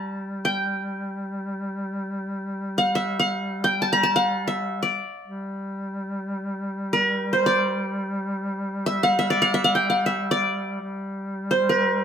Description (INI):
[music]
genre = Arabic maqam ensemble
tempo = free time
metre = none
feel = none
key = G maqam rast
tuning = A4 = 440 Hz
[part]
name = qanun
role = melody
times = 0.0-12.0 s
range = Bb4+50c to Bb5+50c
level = -21 LUFS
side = equal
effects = none
[part]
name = warm duduk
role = drone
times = 0.0-12.0 s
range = G3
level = -29 LUFS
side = equal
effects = none
[sound]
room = moderate studio reverb, RT60 0.6 s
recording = band playing live in one room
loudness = -22 LUFS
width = side -8 dB against mid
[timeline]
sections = 0.0-12.0 A section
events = none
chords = none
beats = free time